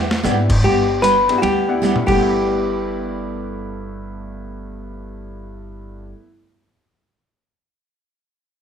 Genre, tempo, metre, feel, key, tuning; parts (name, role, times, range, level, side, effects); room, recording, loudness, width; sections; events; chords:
country, western swing; 152 BPM; 4/4; swing 64% on 8ths; G major; A4 = 440 Hz
picked steel-string acoustic guitar; accompaniment; 0.0-6.2 s; G3 to G4; -24 LUFS; right 4 dB
upright bass; bass; 0.0-6.1 s; G1 to Ab2; -26 LUFS; equal
boom bap sampler-style drum kit; drums; 0.1-2.1 s; crash cymbal, hi-hat, kick drum, ride cymbal, snare drum, toms; -24 LUFS; equal
clear upright piano; accompaniment; 0.2-6.3 s; G2 to F#5; -27 LUFS; left 1 dB
vintage hollow-body jazz guitar; melody; 0.6-6.1 s; F#4 to B4; -17 LUFS; left 3 dB; plate reverb
moderate studio reverb, RT60 0.8 s; -15 LUFS; side -8 dB against mid
0.6-2.2 A section; 2.2-5.4 B section
drum fill 0.0, 1.8-2.2
0.0 G6